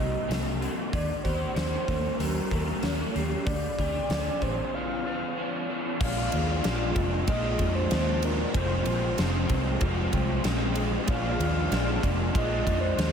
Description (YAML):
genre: rock, shoegaze and dream pop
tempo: 94 BPM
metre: 4/4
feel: straight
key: unclear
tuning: A4 = 442 Hz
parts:
  - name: breathy flute-like synth lead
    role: melody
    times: 0.0-13.1 s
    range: G4 to F5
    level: -33 LUFS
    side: equal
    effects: chorus, ping-pong delay
  - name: crunchy overdriven guitar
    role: riff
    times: 0.0-13.1 s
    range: F2 to Ab4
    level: -29 LUFS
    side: equal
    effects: ensemble chorus
  - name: vintage muted fingered electric bass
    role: bass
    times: 0.0-13.1 s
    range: F1 to F2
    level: -30 LUFS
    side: equal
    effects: none
  - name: huge arena drum kit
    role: drums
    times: 0.3-13.1 s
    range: crash cymbal, hi-hat, kick drum, ride cymbal, snare drum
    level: -31 LUFS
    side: equal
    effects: none
room: moderate lush hall reverb, RT60 2.7 s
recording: dreamy mix soaked in reverb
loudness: -25 LUFS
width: side -7 dB against mid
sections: 0.0-6.0 A section; 6.0-13.1 B section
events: break 4.7-6.0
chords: 0.0 Cm7; 0.9 Ebmaj7; 3.5 Dm7b5; 6.0 Bb7sus4; 8.5 Fm; 11.1 Bb7sus4